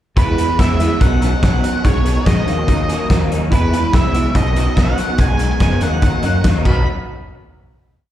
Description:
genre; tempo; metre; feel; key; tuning
indie rock; 143 BPM; 4/4; straight; unclear; A4 = 439 Hz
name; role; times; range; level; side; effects
octave-fuzz lead guitar; melody; 0.2-6.9 s; B4 to B5; -23 LUFS; right 2 dB; distortion, slapback echo, plate reverb
electric guitar through a small old amp; riff; 0.2-6.8 s; B2 to E4; -20 LUFS; equal; ensemble chorus, slapback echo
modern bright fingered electric bass; bass; 0.2-6.8 s; F#1 to F#2; -18 LUFS; equal; none
loose indie drum kit; drums; 0.2-6.8 s; crash cymbal, hi-hat, kick drum, snare drum; -17 LUFS; equal; none
room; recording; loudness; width
light reverb; live gig heard through the venue's PA, recital hall reverb; -13 LUFS; side -12 dB against mid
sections
0.2-6.9 interlude; 6.9-8.1 final hit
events
none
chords
0.2 E; 1.0 B; 1.8 G#m/B; 2.5 D#m; 3.5 E; 4.4 B; 5.2 G#m/B; 5.8 D#m; 6.7 B; 6.9 N.C.

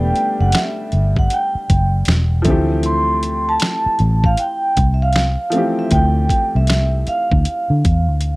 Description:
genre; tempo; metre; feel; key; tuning
R&B, neo-soul; 78 BPM; 4/4; swing 64% on 16ths; unclear; A4 = 440 Hz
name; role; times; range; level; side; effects
vibraphone with soft mallets; melody; 0.0-8.4 s; E5 to C6; -20 LUFS; right 1 dB; none
clear upright piano; accompaniment; 0.0-8.4 s; E3 to G4; -23 LUFS; left 1 dB; none
vintage muted fingered electric bass; bass; 0.0-8.4 s; E1 to D3; -16 LUFS; equal; none
boom bap sampler-style drum kit; drums; 0.2-8.4 s; finger snaps, hi-hat, kick drum, snare drum; -18 LUFS; equal; none
room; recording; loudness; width
small room ambience; dry, close 1970s-style studio recording; -14 LUFS; side -22 dB against mid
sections
0.0-8.4 A section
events
none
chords
0.0 Em11; 2.5 Dm11

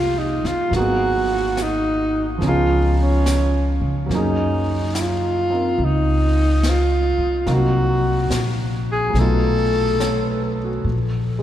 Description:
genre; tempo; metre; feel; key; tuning
jazz ballad; 71 BPM; 4/4; swing 66% on 8ths; unclear; A4 = 440 Hz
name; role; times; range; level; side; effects
breathy alto saxophone; melody; 0.0-10.6 s; Db4 to A4; -21 LUFS; equal; none
warm concert grand piano; accompaniment; 0.0-11.4 s; F3 to Db5; -26 LUFS; right 2 dB; none
upright bass; bass; 0.0-11.4 s; Ab1 to Db3; -20 LUFS; equal; none
jazz brush drum kit; drums; 0.4-11.4 s; brushed snare drum, hi-hat, snare drum; -32 LUFS; left 1 dB; none
room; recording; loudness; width
wet cathedral reverb, RT60 5.7 s; recorded in a church or concert hall; -17 LUFS; side -11 dB against mid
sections
0.0-11.4 A section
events
none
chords
0.0 Fm9; 0.7 Abm7; 2.4 Db9; 4.1 Gb69; 7.5 Cm7b5; 9.1 B7#11; 10.8 N.C.

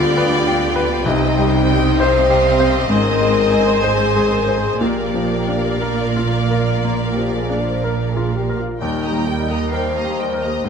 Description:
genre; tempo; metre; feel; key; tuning
classical, romantic movement for piano and orchestra; 58-69 BPM; 4/4; rubato; Eb major; A4 = 440 Hz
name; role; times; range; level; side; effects
clear grand piano; melody; 0.0-10.7 s; C2 to C5; -21 LUFS; left 3 dB; none
rich chamber violin section; melody; 0.0-10.7 s; C5 to G5; -27 LUFS; left 1 dB; none
rich studio violin section; second line; 0.0-10.7 s; C5 to Bb5; -26 LUFS; left 1 dB; none
warm studio viola section; accompaniment; 0.0-10.7 s; G3 to C5; -25 LUFS; right 2 dB; none
mellow French horn section; sustained chords; 0.0-10.7 s; Eb4 to C5; -20 LUFS; left 4 dB; none
rich studio double bass section; bass; 0.0-10.7 s; Ab1 to Eb2; -23 LUFS; right 6 dB; none
warm chamber cello section; bass; 0.0-10.7 s; Eb2 to D3; -25 LUFS; right 5 dB; none
room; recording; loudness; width
moderate scoring stage reverb, RT60 1.7 s; none; -15 LUFS; side -6 dB against mid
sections
0.0-10.7 A section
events
none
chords
0.0 G7/D; 1.1 Cm; 2.9 Ab; 4.8 Bb; 8.8 Eb

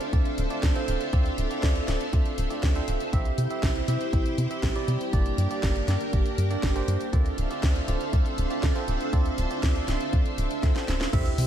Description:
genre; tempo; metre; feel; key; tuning
italo disco; 120 BPM; 4/4; straight; D minor; A4 = 436 Hz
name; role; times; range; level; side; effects
string machine, full ensemble; sustained chords; 0.0-11.5 s; D4 to F5; -30 LUFS; right 1 dB; ensemble chorus
bell-like tine electric piano; stabs; 0.0-11.5 s; Bb3 to E5; -34 LUFS; right 4 dB; lush chorus, analog delay
house drum kit; drums; 0.0-11.5 s; crash cymbal, hi-hat, snare drum; -35 LUFS; equal; overdrive, small room reverb
tight sequencer bass; bass; 0.1-11.5 s; D1 to C3; -27 LUFS; equal; tube saturation
electronic kick drum; drums; 0.1-11.2 s; none; -25 LUFS; equal; overdrive, small room reverb
sub drop; sound effects; 11.2-11.5 s; none; -31 LUFS; equal; none
room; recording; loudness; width
light reverb, digital ambience; none; -23 LUFS; side -10 dB against mid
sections
0.0-11.1 A section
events
drum fill 10.6-11.1; impact 11.1-11.5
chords
0.0 Dm7; 3.1 C; 5.1 Gm; 7.1 Dm7

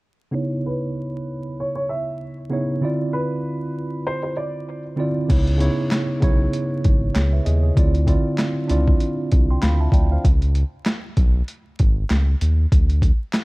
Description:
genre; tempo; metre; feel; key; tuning
hip hop, boom-bap hip-hop; 97 BPM; 4/4; swing 57% on 16ths; unclear; A4 = 440 Hz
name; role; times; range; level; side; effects
mellow tine electric piano; accompaniment; 0.3-10.3 s; C#3 to C6; -23 LUFS; right 1 dB; medium stereo tremolo, low-pass filter
dark upright piano; melody; 0.7-4.8 s; B4 to E5; -29 LUFS; right 1 dB; low-pass filter, analog delay
round analog bass; bass; 5.3-13.1 s; G#1 to D#2; -18 LUFS; equal; none
boom bap sampler-style drum kit; drums; 5.3-13.4 s; crash cymbal, handclaps, hi-hat, kick drum, snare drum; -19 LUFS; equal; overdrive
room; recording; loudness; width
digital ambience; dark, warm production, vinyl crackle; -18 LUFS; side -23 dB against mid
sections
0.3-5.3 A section; 5.3-13.4 B section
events
filter sweep 0.3-5.3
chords
0.3 C#m9; 2.8 Dm9; 5.3 C#m9; 7.8 Dm9; 10.2 C#sus2; 12.7 N.C.

